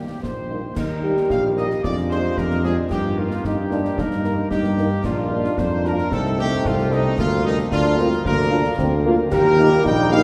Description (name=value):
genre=military-style march for wind band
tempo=112 BPM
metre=2/4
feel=straight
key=Eb major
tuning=A4 = 440 Hz
part: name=warm trumpet section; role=melody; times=0.0-10.2 s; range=Eb4 to G5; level=-29 LUFS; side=equal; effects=none
part: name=warm euphonium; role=second line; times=0.0-10.2 s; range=Bb3 to G4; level=-25 LUFS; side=equal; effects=none
part: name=dark French horn section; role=accompaniment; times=0.0-10.2 s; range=F3 to F4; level=-30 LUFS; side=equal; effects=none
part: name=dark trombone section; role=sustained chords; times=0.0-10.2 s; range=G3 to Eb4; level=-32 LUFS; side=equal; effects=none
part: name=dark tuba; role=bass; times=0.0-10.2 s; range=Bb1 to G2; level=-25 LUFS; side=equal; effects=none
part: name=concert snare drum, concert bass drum and clash cymbals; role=drums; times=0.2-10.2 s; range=none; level=-32 LUFS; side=equal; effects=none
room=wet cathedral reverb, RT60 7.3 s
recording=recorded in a church or concert hall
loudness=-20 LUFS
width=mono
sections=0.8-10.2 A section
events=none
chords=0.0 Eb; 1.8 Ddim/F; 2.9 Eb/G; 5.0 Bb; 6.1 Adim/C; 7.2 Bb/D; 9.3 Eb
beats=0.23 | 0.77 1.30 | 1.84 2.37 | 2.91 3.44 | 3.98 4.51 | 5.05 5.58 | 6.12 6.65 | 7.18 7.72 | 8.26 8.79 | 9.32 9.86